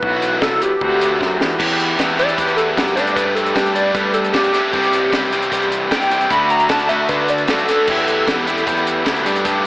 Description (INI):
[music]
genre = indie rock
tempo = 153 BPM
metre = 4/4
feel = straight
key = E minor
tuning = A4 = 440 Hz
[part]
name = hollow square lead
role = melody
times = 0.0-8.6 s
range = G4 to B5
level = -19 LUFS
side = equal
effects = chorus, tape echo
[part]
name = overdriven electric guitar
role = riff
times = 0.0-9.7 s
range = B2 to G4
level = -22 LUFS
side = right 1 dB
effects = wide subtle chorus, tape echo
[part]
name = overdriven semi-hollow guitar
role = riff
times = 0.0-9.7 s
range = B2 to G4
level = -20 LUFS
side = left 1 dB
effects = none
[part]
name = growling picked electric bass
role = bass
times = 0.0-9.7 s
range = B1 to G3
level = -25 LUFS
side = equal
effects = overdrive
[part]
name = compact cocktail drum kit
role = drums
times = 0.0-9.5 s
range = crash cymbal, hi-hat, kick drum, snare drum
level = -22 LUFS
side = equal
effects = none
[part]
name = dark analog pad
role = sustained chords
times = 8.4-9.7 s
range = G4 to B5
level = -29 LUFS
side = equal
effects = none
[sound]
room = moderate lush hall reverb, RT60 2.2 s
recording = big arena sound, AM radio sound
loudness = -14 LUFS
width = side -22 dB against mid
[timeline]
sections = 0.0-1.6 A section; 1.6-9.7 B section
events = drum fill 1.2-1.6; analog synth lead solo 1.6-9.7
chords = 0.0 Bsus4; 0.8 D7sus4; 1.6 Em; 3.0 Gsus2; 4.7 C; 6.3 D; 7.9 Em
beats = | 0.02 0.41 0.81 1.20 | 1.59 1.98 2.37 2.77 | 3.16 3.55 3.94 4.34 | 4.73 5.12 5.51 5.91 | 6.30 6.70 7.09 7.48 | 7.88 8.27 8.66 9.06 | 9.45